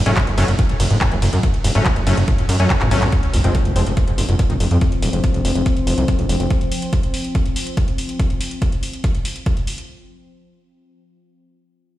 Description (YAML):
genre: driving peak-time techno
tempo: 142 BPM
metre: 4/4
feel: straight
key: unclear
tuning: A4 = 440 Hz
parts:
  - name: gritty driven synth bass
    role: bass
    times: 0.0-6.5 s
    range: Eb1 to Gb2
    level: -19 LUFS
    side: equal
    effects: tube saturation, sidechain pumping
  - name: overdriven acid bass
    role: riff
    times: 0.1-4.8 s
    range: F2 to Gb3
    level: -20 LUFS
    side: equal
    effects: distortion, ensemble chorus, vintage 12-bit sampler grit, sidechain pumping, tape echo
  - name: sync-sweep polysynth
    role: stabs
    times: 0.1-3.8 s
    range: F3 to Db4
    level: -24 LUFS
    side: left 2 dB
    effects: chorus, sidechain pumping, tape echo
  - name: techno drum kit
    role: drums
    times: 0.1-9.9 s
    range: handclaps, hi-hat, ride cymbal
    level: -27 LUFS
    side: equal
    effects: sidechain pumping on hats, sidechain pumping on cymbals
  - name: electronic kick drum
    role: drums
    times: 0.2-9.5 s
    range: none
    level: -19 LUFS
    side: equal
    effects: none
  - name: analog drone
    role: drone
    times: 4.1-8.2 s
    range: F3 to C4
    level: -26 LUFS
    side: left 2 dB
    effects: chorus, sidechain pumping
  - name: sub drop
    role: sound effects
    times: 3.1-4.8 s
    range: none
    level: -26 LUFS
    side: equal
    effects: none
room: light reverb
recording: played on a big sound system in a bare room, stone room reverb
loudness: -16 LUFS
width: side -14 dB against mid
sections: 0.0-3.1 A section; 3.1-9.9 B section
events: drop 0.0-3.1; drum fill 2.8-3.1; impact 3.1-4.8; filter sweep on analog polysynth 3.1-4.8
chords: 0.0 Gbm; 3.1 F5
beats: 0.17 0.59 1.01 | 1.43 1.86 2.28 2.70 | 3.12 3.55 3.97 4.39 | 4.81 5.24 5.66 6.08 | 6.50 6.93 7.35 7.77 | 8.19 8.62 9.04 9.46